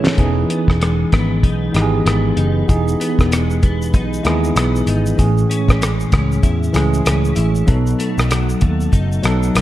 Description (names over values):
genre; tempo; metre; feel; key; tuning
indie pop, bedroom pop; 96 BPM; 4/4; swing 60% on 16ths; E major; A4 = 441 Hz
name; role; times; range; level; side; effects
clean electric guitar; accompaniment; 0.0-9.6 s; A2 to E4; -22 LUFS; left 4 dB; ensemble chorus, vibrato effect
tine electric piano; accompaniment; 0.0-9.6 s; E3 to C#5; -20 LUFS; right 3 dB; medium stereo tremolo, cassette tape
cloth-damped thuddy drum kit; drums; 0.1-9.6 s; hi-hat, kick drum, rim click, shaker, snare drum; -18 LUFS; equal; none
vintage muted picked electric bass; bass; 0.2-9.6 s; E1 to E2; -18 LUFS; equal; none
room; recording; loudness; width
light reverb; dark, warm production; -14 LUFS; side -14 dB against mid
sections
0.0-9.6 A section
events
drum fill 0.0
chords
0.2 Emaj7; 5.2 Amaj7; 7.7 B7